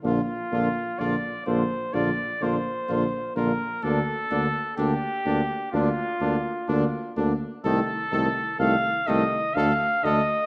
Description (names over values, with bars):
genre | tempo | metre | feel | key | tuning
classical, brass quintet | 63 BPM | 4/4 | rubato | Bb major | A4 = 440 Hz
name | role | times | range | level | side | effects
brilliant trombone | accompaniment | 0.0-10.2 s | D3 to Eb3 | -36 LUFS | equal | none
mellow French horn | accompaniment | 0.0-10.2 s | A3 to Bb3 | -33 LUFS | equal | none
warm tuba | bass | 0.0-10.2 s | Bb1 to D2 | -30 LUFS | equal | none
mellow cornet | melody | 0.1-10.5 s | F4 to F5 | -29 LUFS | equal | none
clear trumpet | second line | 0.1-10.2 s | D4 to A4 | -36 LUFS | equal | none
room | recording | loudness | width
wet recital hall reverb, RT60 1.4 s | none | -25 LUFS | mono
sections
0.0-10.5 A section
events
none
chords
0.1 Bb; 3.8 Bb/D; 7.6 Adim/C; 9.6 D5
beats
| 0.05 1.00 1.95 2.90 | 3.84 4.79 5.74 6.69 | 7.64 8.59 9.55